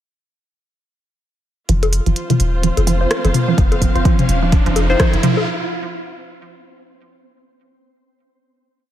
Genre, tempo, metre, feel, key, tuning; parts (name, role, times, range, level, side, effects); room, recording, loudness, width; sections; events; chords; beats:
minimal techno; 127 BPM; 4/4; swing 59% on 16ths; A4 = 438 Hz
resonant blip pluck; riff; 1.7-5.3 s; F3; -22 LUFS; right 7 dB; chorus, sidechain pumping, digital delay
punchy sub bass; bass; 1.7-5.2 s; Eb1 to F1; -18 LUFS; equal; sidechain pumping
minimal click drum kit; drums; 1.7-5.3 s; hi-hat, rim click; -23 LUFS; equal; overdrive
riser; sound effects; 2.9-5.5 s; -26 LUFS; equal
flickering grainy texture; texture; 2.3-5.5 s; C4 to C5; -32 LUFS; left 1 dB; built-in reverb, sidechain pumping
muted studio string section; texture; 1.7-5.5 s; F4 to F5; -27 LUFS; equal; sidechain pumping
electronic bongos and toms; percussion; 1.8-5.5 s; -20 LUFS; left 4 dB; digital delay
filtered dub chord stab; stabs; 3.0-5.0 s; C4 to C5; -23 LUFS; left 2 dB; phaser, digital delay
electronic kick drum; drums; 3.6-5.1 s; -15 LUFS; equal; overdrive
light reverb, digital ambience; -14 LUFS; side -12 dB against mid
1.7-5.5 build
build-up 1.7-5.5; filter sweep on synth arpeggio sound 1.7-5.5; riser 2.9-5.5
1.7 F5
| 1.69 2.16 2.64 3.11 | 3.58 4.05 4.53 5.00